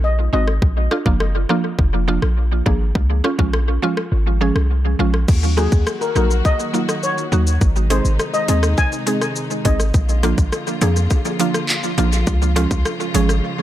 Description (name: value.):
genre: dancehall.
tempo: 103 BPM.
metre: 4/4.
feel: straight.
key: Eb dorian.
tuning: A4 = 440 Hz.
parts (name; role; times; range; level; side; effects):
steel pan; melody; 0.0-0.4, 5.6-9.8 s; Ab4 to Ab5; -24 LUFS; left 3 dB; analog delay.
warm 808-style bass; bass; 0.0-13.4 s; F1 to F2; -17 LUFS; equal; none.
mallet-like synth pluck; accompaniment; 0.3-13.3 s; F3 to Ab4; -22 LUFS; right 3 dB; chorus, analog delay.
island pop drum kit; drums; 0.5-13.4 s; crash cymbal, handclaps, hi-hat, kick drum, rim click, shaker; -21 LUFS; equal; overdrive, analog delay.
warm studio string section; sustained chords; 5.3-13.6 s; C3 to Gb4; -27 LUFS; equal; sidechain pumping.
bongos; percussion; 10.8-13.3 s; none; -34 LUFS; left 3 dB; none.
room: light reverb.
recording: echo-heavy mix.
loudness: -15 LUFS.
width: side -13 dB against mid.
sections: 0.0-5.3 A section; 5.3-13.6 B section.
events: kick muted 4.1-5.3; break 13.4.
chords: 0.0 Ab; 0.6 Bb; 3.0 Db; 5.3 Ebm; 7.6 Ab; 9.9 Bb; 12.3 Db.